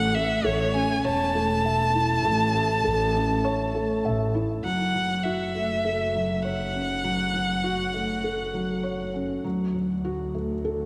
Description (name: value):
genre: piano and strings electronica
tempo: 100 BPM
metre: 4/4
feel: straight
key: unclear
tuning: A4 = 439 Hz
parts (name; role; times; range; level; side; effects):
- rich violin; melody; 0.0-9.1 s; C#5 to A5; -29 LUFS; equal; delay
- felt-muted upright piano; riff; 0.0-10.9 s; F#3 to E5; -29 LUFS; equal; delay
- rich studio double bass section; bass; 0.0-10.9 s; E1 to D2; -33 LUFS; equal; none
room: wet lush hall reverb, RT60 2.5 s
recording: dreamy mix soaked in reverb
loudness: -25 LUFS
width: mono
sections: 0.0-4.6 A section; 4.6-10.9 B section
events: none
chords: 0.0 A; 4.6 F#m; 9.4 D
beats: 0.45 1.04 1.65 | 2.25 2.85 3.44 4.04 | 4.64 5.25 5.84 6.45 | 7.04 7.64 8.24 8.85 | 9.45 10.04 10.64